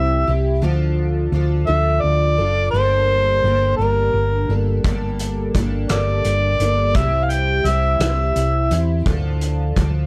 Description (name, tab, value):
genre	folk rock and heartland rock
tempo	57 BPM (dotted quarters)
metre	6/8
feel	straight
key	G dorian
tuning	A4 = 441 Hz
part	overdriven harmonica	melody	0.0-8.8 s	Bb4 to G5	-22 LUFS	equal	none
part	picked twelve-string acoustic guitar	accompaniment	0.0-10.1 s	G2 to A4	-27 LUFS	equal	analog chorus
part	hollow-body short-scale fingered electric bass	bass	0.0-10.1 s	F#1 to E2	-22 LUFS	equal	none
part	loose indie drum kit	drums	4.8-9.9 s	hi-hat, kick drum, rim click	-25 LUFS	equal	none
room	light reverb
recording	none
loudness	-18 LUFS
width	mono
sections	0.0-10.1 A section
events	none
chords	0.0 C; 0.6 Dm; 2.7 Gmadd9; 7.0 C; 9.1 Dm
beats	| 0.62 1.68 | 2.74 3.79 | 4.85 5.91 | 6.96 8.01 | 9.07